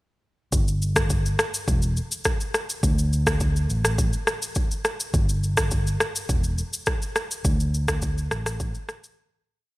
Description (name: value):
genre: afrobeats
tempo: 104 BPM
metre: 4/4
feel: straight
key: unclear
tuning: A4 = 441 Hz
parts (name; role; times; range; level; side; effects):
- fingered electric bass; bass; 0.5-8.7 s; E1 to D2; -25 LUFS; equal; none
- afro-pop drum kit; drums; 0.5-9.2 s; kick drum, rim click, shaker; -23 LUFS; equal; none
room: little or no reverb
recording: none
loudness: -22 LUFS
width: side -19 dB against mid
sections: 0.5-9.8 verse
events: fade-out 7.4-9.8; break 9.2-9.8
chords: none